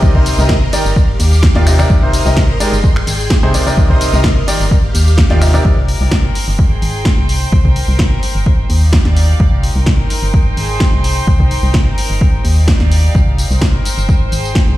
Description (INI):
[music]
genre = piano house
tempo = 128 BPM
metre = 4/4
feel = swing 53% on 16ths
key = C minor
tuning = A4 = 442 Hz
[part]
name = string machine, violins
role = sustained chords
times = 0.0-5.6 s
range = G4 to D6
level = -23 LUFS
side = right 1 dB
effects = ensemble chorus, sidechain pumping
[part]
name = clear baby grand piano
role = riff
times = 0.0-5.7 s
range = C3 to Eb5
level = -17 LUFS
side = left 1 dB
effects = sidechain pumping, ping-pong delay
[part]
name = organ-like FM bass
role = bass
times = 0.0-14.8 s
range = G1 to Eb2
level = -13 LUFS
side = equal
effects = tube saturation, sidechain pumping
[part]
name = electronic kick drum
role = drums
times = 0.0-14.7 s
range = none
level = -13 LUFS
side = equal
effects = none
[part]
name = punchy analog drum machine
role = drums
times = 0.0-14.7 s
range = finger snaps, hi-hat, ride cymbal, snare drum, tambourine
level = -20 LUFS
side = equal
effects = none
[part]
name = rich chamber string section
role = texture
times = 5.7-14.8 s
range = Eb4 to G5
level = -22 LUFS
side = equal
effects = sidechain pumping
[sound]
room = little or no reverb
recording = played on a big sound system in a bare room, stone room reverb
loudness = -10 LUFS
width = side -15 dB against mid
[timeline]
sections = 0.0-5.7 A section; 5.7-14.8 B section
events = drop 0.0-5.7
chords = 0.0 Cm7; 1.0 Ebmaj9; 1.9 Cm7; 2.8 Abmaj7; 3.5 Cm7; 4.7 Ebmaj9; 5.7 Cm7; 6.6 Abmaj7; 7.3 Cm7; 8.5 Ebmaj9; 9.4 Cm7; 10.3 Abmaj7; 11.0 Cm7; 12.2 Ebmaj9; 13.2 Cm7; 14.1 Abmaj7